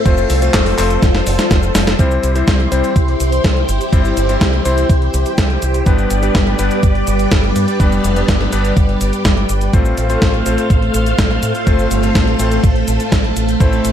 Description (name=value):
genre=italo disco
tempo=124 BPM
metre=4/4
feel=straight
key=C major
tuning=A4 = 441 Hz
part: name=string machine, full ensemble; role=sustained chords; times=0.0-13.9 s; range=G3 to F5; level=-18 LUFS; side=equal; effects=ensemble chorus
part: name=bright electric grand piano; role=stabs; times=0.1-13.9 s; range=G3 to C5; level=-21 LUFS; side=left 3 dB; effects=tape echo
part: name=fingered electric bass with an envelope filter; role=bass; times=0.1-13.9 s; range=F1 to A2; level=-17 LUFS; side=equal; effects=none
part: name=clean 12-bit digital drum machine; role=drums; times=0.1-13.9 s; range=cabasa, handclaps, hi-hat, snare drum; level=-19 LUFS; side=equal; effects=gated reverb
part: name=electronic kick drum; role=drums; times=0.1-13.7 s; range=none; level=-14 LUFS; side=equal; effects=none
room=light reverb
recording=none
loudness=-12 LUFS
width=side -9 dB against mid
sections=0.0-2.0 A section; 2.0-13.9 B section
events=drum fill 1.0-2.0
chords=0.1 F; 2.0 C; 5.9 G; 9.7 F/A